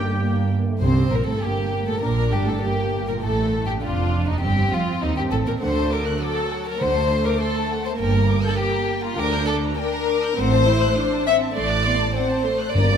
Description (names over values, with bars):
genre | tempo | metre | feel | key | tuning
quick classical-period movement for symphony orchestra | 100 BPM | 4/4 | rubato | G minor | A4 = 440 Hz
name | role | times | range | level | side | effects
warm chamber violin section | melody | 0.0-13.0 s | Eb4 to G6 | -32 LUFS | left 4 dB | none
clear oboe | second line | 0.0-0.5 s | G4 | -34 LUFS | left 1 dB | none
warm chamber violin section | second line | 0.0-13.0 s | Eb4 to E5 | -23 LUFS | left 3 dB | none
warm chamber viola section | accompaniment | 0.0-13.0 s | F#3 to E4 | -27 LUFS | right 2 dB | none
mellow French horn section | sustained chords | 0.0-0.8 s | A3 to Bb3 | -31 LUFS | left 3 dB | none
dark chamber cello section | bass | 0.0-13.0 s | D2 to D3 | -26 LUFS | right 2 dB | none
warm chamber double bass section | bass | 0.0-13.0 s | F1 to Eb2 | -25 LUFS | right 2 dB | none
timpani | percussion | 0.8-1.7, 6.8-7.7, 12.8-13.0 s | G2 to D3 | -24 LUFS | left 2 dB | none
room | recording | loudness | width
moderate scoring stage reverb, RT60 1.9 s | none | -19 LUFS | side -8 dB against mid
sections
0.8-13.0 A section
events
none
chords
0.0 Gm; 3.2 Adim; 5.6 D; 6.8 D7; 8.0 Gm; 10.4 F#dim/A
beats
0.19 | 0.81 1.42 2.02 2.62 | 3.22 3.82 4.42 5.02 | 5.62 6.21 6.81 7.41 | 8.00 8.59 9.17 9.77 | 10.37 10.96 11.56 12.15 | 12.75